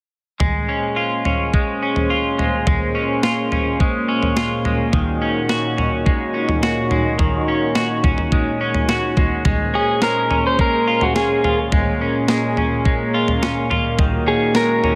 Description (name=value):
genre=dream pop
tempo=106 BPM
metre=4/4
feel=straight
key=Bb minor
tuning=A4 = 439 Hz
part: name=lush unison pad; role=sustained chords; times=0.4-15.0 s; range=Bb2 to Db5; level=-24 LUFS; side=equal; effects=chorus
part: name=clean electric guitar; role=arpeggios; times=0.4-15.0 s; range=Eb3 to Gb4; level=-24 LUFS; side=equal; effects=analog chorus, tape echo
part: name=clean 12-bit digital drum machine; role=drums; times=0.4-15.0 s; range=kick drum, snare drum, toms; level=-22 LUFS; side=equal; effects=none
part: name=electric slide guitar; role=melody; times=9.8-15.0 s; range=Gb4 to C5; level=-21 LUFS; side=equal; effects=tape echo
room=moderate concert hall reverb, RT60 2.3 s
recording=none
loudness=-19 LUFS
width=mono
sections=0.4-9.5 A section; 9.5-15.0 B section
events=none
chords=0.4 Bbm7; 4.9 Ab7sus4/Bb; 9.5 Bbm7; 14.0 Ab7sus4/Bb